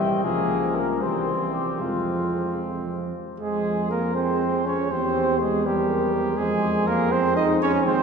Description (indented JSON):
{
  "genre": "classical, brass quintet",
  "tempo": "74-83 BPM (dotted quarters)",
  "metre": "6/8",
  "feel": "rubato",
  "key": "F minor",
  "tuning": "A4 = 440 Hz",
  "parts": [
    { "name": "dark trumpet", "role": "melody", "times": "0.0-8.0 s", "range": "F4 to G5", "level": "-29 LUFS", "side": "left 6 dB", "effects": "none" },
    { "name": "warm trumpet", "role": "second line", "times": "0.0-8.0 s", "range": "Bb3 to Eb5", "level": "-29 LUFS", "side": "right 3 dB", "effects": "none" },
    { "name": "clear trombone", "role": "accompaniment", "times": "0.0-8.0 s", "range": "E3 to Eb4", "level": "-25 LUFS", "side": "right 2 dB", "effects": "none" },
    { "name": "mellow French horn", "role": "accompaniment", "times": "0.0-8.0 s", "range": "F3 to Bb4", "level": "-30 LUFS", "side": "left 1 dB", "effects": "none" },
    { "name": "warm tuba", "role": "bass", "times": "0.0-8.0 s", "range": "Ab1 to F2", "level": "-28 LUFS", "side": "right 1 dB", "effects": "none" }
  ],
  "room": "wet cathedral reverb, RT60 5.4 s",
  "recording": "heard from further back in the room",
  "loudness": "-21 LUFS",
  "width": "side -6 dB against mid",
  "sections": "0.0-3.4 A section; 3.4-8.0 B section",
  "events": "none",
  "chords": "0.2 Bbm/Db; 1.0 C; 1.8 Fm; 4.9 C7/E; 6.4 Fm",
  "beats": "| 0.24 1.01 | 1.81 2.62 | 3.41 4.16 | 4.91 5.65 | 6.38 7.12 | 7.85"
}